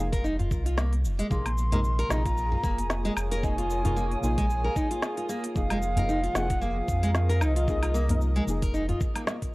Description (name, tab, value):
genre	organic downtempo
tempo	113 BPM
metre	4/4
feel	swing 56% on 16ths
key	Bb minor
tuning	A4 = 440 Hz
part	reedy bansuri	melody	0.0-8.5 s	Eb5 to C6	-33 LUFS	equal	tape echo
part	deep mellow chord stab	accompaniment	0.0-9.5 s	C3 to Bb4	-35 LUFS	left 1 dB	chorus, sidechain pumping, tape echo
part	warm sub bass	bass	0.0-8.9 s	F1 to F2	-27 LUFS	equal	tube saturation, sidechain pumping
part	nylon-string guitar	arpeggios	0.1-9.4 s	Ab3 to Bb4	-32 LUFS	equal	tape echo
part	electronic kick drum	drums	0.1-9.5 s	none	-30 LUFS	equal	none
part	organic electronic drum kit	drums	0.1-9.5 s	hi-hat, shaker, snare drum, woodblock	-33 LUFS	equal	none
part	udu	percussion	0.4-9.0 s	none	-29 LUFS	equal	none
part	warm analog pad	sustained chords	1.3-9.5 s	F3 to Eb5	-37 LUFS	right 1 dB	chorus, sidechain pumping
part	drifting glass-harmonics texture	texture	1.9-9.5 s	Ab4	-45 LUFS	right 2 dB	chorus, built-in reverb
room	digital ambience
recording	dry, gritty hardware recording, cassette tape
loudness	-24 LUFS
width	side -21 dB against mid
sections	0.0-9.5 A section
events	none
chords	0.0 F7sus4; 1.3 Bbm7; 5.6 F7sus4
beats	0.25 0.78 | 1.31 1.84 2.37 2.90 | 3.43 3.96 4.50 5.03 | 5.56 6.09 6.62 7.15 | 7.68 8.21 8.74 9.27